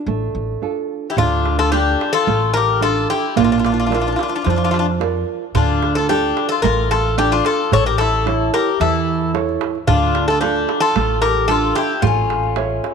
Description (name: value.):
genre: greek folk, Greek bouzouki band.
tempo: 111 BPM.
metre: 4/4.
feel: straight.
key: D harmonic minor.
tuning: A4 = 439 Hz.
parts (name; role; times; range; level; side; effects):
Greek bouzouki; melody; 0.0-12.9 s; D4 to C#5; -20 LUFS; left 1 dB; none.
nylon-string guitar; accompaniment; 0.1-12.9 s; D3 to E5; -21 LUFS; right 9 dB; none.
upright bass; bass; 0.1-12.8 s; A1 to F2; -22 LUFS; left 1 dB; none.
Greek bouzouki; second line; 1.1-12.9 s; C#4 to A4; -21 LUFS; left 12 dB; none.
darbuka; percussion; 1.2-12.9 s; none; -24 LUFS; right 6 dB; none.
room: moderate echo chamber reverb, RT60 2.3 s.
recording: 1960s-style stereo with parts hard left and right.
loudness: -15 LUFS.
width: side -6 dB against mid.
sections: 0.0-1.2 A section; 1.2-12.9 B section.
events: none.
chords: 0.0 Dm; 3.4 Bb; 5.5 Dm; 7.7 A; 9.9 Dm; 12.0 A.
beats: 0.08 0.63 | 1.18 1.73 2.27 2.82 | 3.37 3.92 4.46 5.00 | 5.55 6.09 6.63 7.18 | 7.72 8.26 8.80 9.34 | 9.88 10.42 10.96 11.49 | 12.03 12.57.